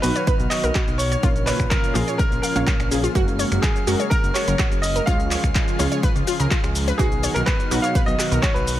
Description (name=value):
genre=progressive house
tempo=125 BPM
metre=4/4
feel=straight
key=F# major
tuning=A4 = 442 Hz
part: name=bright grand piano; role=melody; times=0.0-8.8 s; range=G#4 to E#5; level=-26 LUFS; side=equal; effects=vintage 12-bit sampler grit, tape echo
part: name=lush unison pad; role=sustained chords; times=0.0-8.8 s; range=A#2 to G#4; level=-29 LUFS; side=right 1 dB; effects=chorus, sidechain pumping
part: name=analog pluck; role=arpeggios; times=0.0-8.5 s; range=E#4 to E#5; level=-28 LUFS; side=equal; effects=chorus, sidechain pumping, tape echo
part: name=wide unison pluck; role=stabs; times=0.0-8.8 s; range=A#2 to C#5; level=-28 LUFS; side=left 1 dB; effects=sidechain pumping, tape echo
part: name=fat analog bass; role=bass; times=0.0-8.8 s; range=F#1 to C#2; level=-24 LUFS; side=equal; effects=sidechain pumping
part: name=big-room dance drum kit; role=drums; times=0.0-8.8 s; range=finger snaps, handclaps, hi-hat, shaker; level=-28 LUFS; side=equal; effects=sidechain pumping on hats, sidechain pumping on perc
part: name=drifting glass-harmonics texture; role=texture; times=0.0-8.8 s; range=E#6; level=-36 LUFS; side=left 1 dB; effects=chorus, built-in reverb, sidechain pumping
part: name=electronic kick drum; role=drums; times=0.3-8.5 s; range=none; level=-21 LUFS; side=equal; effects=none
room=digital ambience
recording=none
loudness=-18 LUFS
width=side -13 dB against mid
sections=0.0-8.8 A section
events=none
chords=0.0 B; 1.2 A#m; 3.2 F#add9; 5.1 C#; 7.0 B